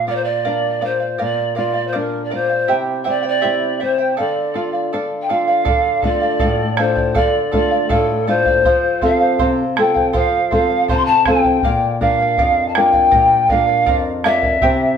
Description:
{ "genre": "andean folk, Andean ensemble", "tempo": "80 BPM", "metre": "2/4", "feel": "straight", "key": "D minor", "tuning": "A4 = 440 Hz", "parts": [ { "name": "mellow pan flute", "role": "melody", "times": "0.0-15.0 s", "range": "A4 to C6", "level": "-16 LUFS", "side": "equal", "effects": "none" }, { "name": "charango", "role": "accompaniment", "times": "0.0-15.0 s", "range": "E4 to G5", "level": "-21 LUFS", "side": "right 1 dB", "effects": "none" }, { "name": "flamenco guitar", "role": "accompaniment", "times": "0.0-15.0 s", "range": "F2 to Bb4", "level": "-20 LUFS", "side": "left 1 dB", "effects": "none" }, { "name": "bombo", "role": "percussion", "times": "5.7-14.8 s", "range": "none", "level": "-22 LUFS", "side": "right 1 dB", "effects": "none" } ], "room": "wet stone room reverb, RT60 0.9 s", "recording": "band playing live in one room", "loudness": "-14 LUFS", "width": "side -7 dB against mid", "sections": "0.0-5.7 A section; 5.7-15.0 A section", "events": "none", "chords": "0.0 Bb; 2.7 C; 4.2 Dm; 8.6 F; 11.6 Bb" }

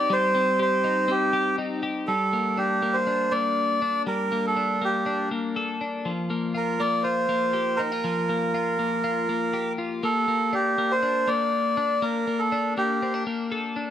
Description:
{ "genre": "indie pop", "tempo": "121 BPM", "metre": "4/4", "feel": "straight", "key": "G minor", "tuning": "A4 = 436 Hz", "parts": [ { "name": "melodica", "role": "melody", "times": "0.0-13.2 s", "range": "G4 to D5", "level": "-24 LUFS", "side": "right 1 dB", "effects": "none" }, { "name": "twelve-string electric guitar", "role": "arpeggios", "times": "0.0-13.9 s", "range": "F3 to A4", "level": "-27 LUFS", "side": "left 3 dB", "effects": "none" } ], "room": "light reverb, small room ambience", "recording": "none", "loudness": "-22 LUFS", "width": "side -10 dB against mid", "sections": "0.0-2.1 A section; 2.1-13.9 B section", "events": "none", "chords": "0.0 Cm; 2.1 Gmadd9; 6.1 Ebadd9 (rootless); 10.0 Gmadd9" }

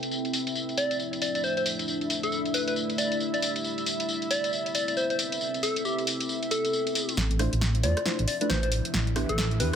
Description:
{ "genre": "UK garage, two-step garage", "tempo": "136 BPM", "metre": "4/4", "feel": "swing 61% on 16ths", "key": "A minor", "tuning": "A4 = 439 Hz", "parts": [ { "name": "warm analog pad", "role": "sustained chords", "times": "0.0-9.8 s", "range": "E4 to E5", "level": "-35 LUFS", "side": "equal", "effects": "chorus" }, { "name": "house drum kit", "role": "drums", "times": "0.0-9.8 s", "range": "hi-hat, rim click, snare drum, tambourine", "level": "-30 LUFS", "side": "left 1 dB", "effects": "low-pass filter on perc, low-pass filter on hats, low-pass filter on snare" }, { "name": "deep dark ambient pad", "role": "texture", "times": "0.0-9.8 s", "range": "F3 to G5", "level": "-34 LUFS", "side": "equal", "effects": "chorus, built-in reverb" }, { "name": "soft struck synth lead", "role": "melody", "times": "0.8-9.8 s", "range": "G4 to D5", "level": "-30 LUFS", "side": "left 1 dB", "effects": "chorus, dub echo" }, { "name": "dark detuned saw bass", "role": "bass", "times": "7.2-9.7 s", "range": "A1 to E2", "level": "-26 LUFS", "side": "equal", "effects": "none" }, { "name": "riser", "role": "sound effects", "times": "8.3-9.8 s", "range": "none", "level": "-40 LUFS", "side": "right 4 dB", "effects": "none" }, { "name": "deep mellow chord stab", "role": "stabs", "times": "7.4-9.7 s", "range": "A3 to C5", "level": "-32 LUFS", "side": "right 1 dB", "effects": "chorus, phaser, dub echo" } ], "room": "light reverb", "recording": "none", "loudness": "-25 LUFS", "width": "side -8 dB against mid", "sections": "0.0-7.2 A section; 7.2-9.8 B section", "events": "filter sweep on analog synth pad 0.0-7.2; build-up 7.2-9.8; drum fill 7.2-9.8; filter sweep on soft synth lead 7.2-9.8", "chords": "0.1 Dm9; 7.2 Dm9/A; 8.9 Em7/A" }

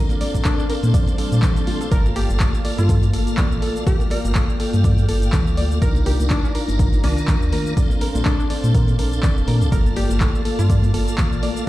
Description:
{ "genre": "deep house", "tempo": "123 BPM", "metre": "4/4", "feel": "swing 56% on 16ths", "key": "G minor", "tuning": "A4 = 440 Hz", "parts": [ { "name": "soft string machine", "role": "sustained chords", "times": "0.0-11.7 s", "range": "Bb3 to Bb5", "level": "-32 LUFS", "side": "left 1 dB", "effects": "ensemble chorus, sidechain pumping" }, { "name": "tonewheel organ", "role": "stabs", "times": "0.0-11.6 s", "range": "Eb3 to Bb4", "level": "-27 LUFS", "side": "equal", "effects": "chorus vibrato, fast rotary speaker, sidechain pumping, digital delay" }, { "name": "punchy analog drum machine", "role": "drums", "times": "0.1-11.7 s", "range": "handclaps, hi-hat, shaker", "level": "-31 LUFS", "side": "equal", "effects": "none" }, { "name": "congas", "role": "percussion", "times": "0.1-11.5 s", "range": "none", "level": "-30 LUFS", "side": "left 3 dB", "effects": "none" }, { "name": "soft round pluck", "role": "arpeggios", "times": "0.2-11.5 s", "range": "F4 to D5", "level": "-32 LUFS", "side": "equal", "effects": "chorus, cassette tape, sidechain pumping, tape echo" }, { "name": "sub bass with octave", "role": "bass", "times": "0.3-11.4 s", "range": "F1 to Bb2", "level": "-19 LUFS", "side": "equal", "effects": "sidechain pumping" }, { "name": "electronic kick drum", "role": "drums", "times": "0.3-11.3 s", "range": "none", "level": "-19 LUFS", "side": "equal", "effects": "none" }, { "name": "glassy wavetable pluck", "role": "melody", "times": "0.5-10.8 s", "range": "D4 to Bb4", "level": "-31 LUFS", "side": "left 2 dB", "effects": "chorus, tape echo" }, { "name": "swell", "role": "sound effects", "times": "1.1-1.9 s", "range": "none", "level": "-31 LUFS", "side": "right 1 dB", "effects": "none" } ], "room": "little or no reverb", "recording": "played on a big sound system in a bare room, stone room reverb", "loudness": "-16 LUFS", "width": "side -16 dB against mid", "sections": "0.0-11.7 A section", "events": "swell 1.1-1.9", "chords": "0.0 Bbmaj9; 1.9 Gm9; 5.8 Cm11; 7.8 Bbmaj9; 9.7 Gm9" }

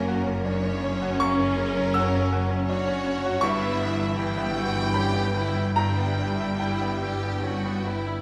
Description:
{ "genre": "cinematic, emotional film score for orchestra", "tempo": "71-82 BPM", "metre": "3/4", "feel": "rubato", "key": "unclear", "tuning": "A4 = 441 Hz", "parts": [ { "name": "rich studio violin section", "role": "melody", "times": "0.0-8.0 s", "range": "A#4 to G5", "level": "-36 LUFS", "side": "equal", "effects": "none" }, { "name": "rich studio violin section", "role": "second line", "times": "0.0-8.2 s", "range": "C#4 to G4", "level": "-35 LUFS", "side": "equal", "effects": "none" }, { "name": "bright grand piano", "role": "accompaniment", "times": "0.0-8.2 s", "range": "F#2 to E6", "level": "-31 LUFS", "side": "equal", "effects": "none" }, { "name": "rich studio viola section", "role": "accompaniment", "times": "0.0-8.0 s", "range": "E3 to C#4", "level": "-33 LUFS", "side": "equal", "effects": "none" }, { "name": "rich studio cello section", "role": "bass", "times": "0.0-8.0 s", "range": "F#2 to G2", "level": "-31 LUFS", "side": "equal", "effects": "none" }, { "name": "rich studio double bass section", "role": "bass", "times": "0.0-8.0 s", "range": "F#1 to G1", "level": "-33 LUFS", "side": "equal", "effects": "none" } ], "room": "moderate recital hall reverb, RT60 1.7 s", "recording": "none", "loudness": "-25 LUFS", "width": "mono", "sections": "0.0-8.2 A section", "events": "none", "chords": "0.0 F#; 3.4 Em/G" }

